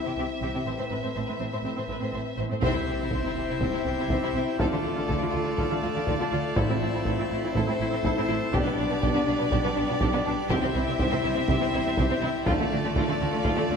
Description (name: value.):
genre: cinematic, epic orchestral film score.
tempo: 122 BPM.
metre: 4/4.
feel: straight.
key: unclear.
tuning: A4 = 438 Hz.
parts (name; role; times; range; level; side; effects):
rich symphonic violin section; melody; 0.0-13.8 s; C5 to E5; -34 LUFS; left 3 dB; none.
warm symphonic viola section; accompaniment; 0.0-13.7 s; A3 to F4; -33 LUFS; right 2 dB; none.
warm French horn section; sustained chords; 0.0-13.8 s; G3 to B4; -32 LUFS; left 4 dB; none.
rich symphonic violin section; second line; 0.1-13.8 s; A3 to C5; -34 LUFS; left 2 dB; none.
rich symphonic cello section; bass; 0.1-13.7 s; A2 to D3; -33 LUFS; right 3 dB; none.
rich symphonic double bass section; bass; 0.2-13.7 s; A1 to D2; -33 LUFS; right 4 dB; none.
pipe organ, full organ; sustained chords; 2.6-13.8 s; A3 to E5; -32 LUFS; equal; none.
solo taiko drums; drums; 2.6-13.8 s; none; -31 LUFS; equal; none.
sub drop; sound effects; 2.7-4.6 s; none; -40 LUFS; left 1 dB; none.
timpani; percussion; 6.6-7.3 s; A2; -34 LUFS; left 1 dB; none.
room: wet scoring stage reverb, RT60 2.1 s.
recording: none.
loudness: -24 LUFS.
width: side -6 dB against mid.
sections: 0.0-2.6 A section; 2.6-13.8 B section.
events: band accent 2.6-3.1; impact 2.6-4.6.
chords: 0.0 C; 0.7 Amadd9; 2.6 C; 4.6 Dm; 6.6 Am; 8.5 G/B; 10.5 C; 12.5 Dm.